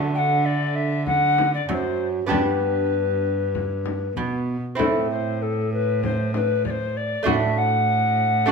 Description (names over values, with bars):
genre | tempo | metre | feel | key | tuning
classical, renaissance-style consort dance | 97 BPM | 4/4 | straight | unclear | A4 = 439 Hz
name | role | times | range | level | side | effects
lute | accompaniment | 0.0-8.5 s | F#2 to G4 | -27 LUFS | right 6 dB | none
warm cello | bass | 0.0-8.5 s | F#2 to D3 | -26 LUFS | right 2 dB | none
mellow hollow alto recorder | melody | 0.1-8.5 s | A4 to G5 | -23 LUFS | left 3 dB | none
frame drum | percussion | 1.1-8.5 s | none | -29 LUFS | left 5 dB | none
room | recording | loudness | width
wet stone room reverb, RT60 1.1 s | none | -20 LUFS | side -5 dB against mid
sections
0.0-8.5 A section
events
none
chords
0.0 D; 2.3 G; 4.8 Am; 7.3 D/A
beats
0.45 1.06 1.68 | 2.31 2.93 3.55 4.17 | 4.79 5.42 6.03 6.65 | 7.27 7.89 8.50